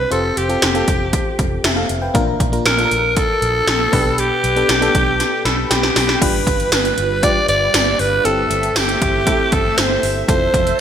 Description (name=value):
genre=1980s-style pop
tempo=118 BPM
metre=4/4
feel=straight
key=unclear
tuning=A4 = 441 Hz
part: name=breathy alto saxophone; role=melody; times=0.0-10.8 s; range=G4 to D5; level=-17 LUFS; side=equal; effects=ping-pong delay
part: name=FM electric piano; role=accompaniment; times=0.0-10.8 s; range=G2 to B5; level=-22 LUFS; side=left 1 dB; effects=chorus
part: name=vintage muted fingered electric bass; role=bass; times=0.0-10.7 s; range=F1 to B1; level=-24 LUFS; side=equal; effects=none
part: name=80s electronic pad drums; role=drums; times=0.1-10.8 s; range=crash cymbal, hi-hat, kick drum, snare drum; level=-18 LUFS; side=equal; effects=none
part: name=phased analog pad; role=sustained chords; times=6.2-10.8 s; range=F3 to E5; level=-26 LUFS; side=right 1 dB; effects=phaser, chorus
part: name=tambourine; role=percussion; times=6.7-9.9 s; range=none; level=-29 LUFS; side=right 11 dB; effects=none
room=moderate plate reverb, RT60 1.7 s, digital ambience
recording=bright 1980s-style digital production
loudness=-14 LUFS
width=side -9 dB against mid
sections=0.0-6.2 A section; 6.2-10.8 B section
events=drum fill 5.2-6.2; FM electric piano fill 5.2-6.2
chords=0.1 Fsus2; 2.1 Bb; 3.9 G/B; 6.2 G7; 8.2 C6/G; 10.3 Fmaj7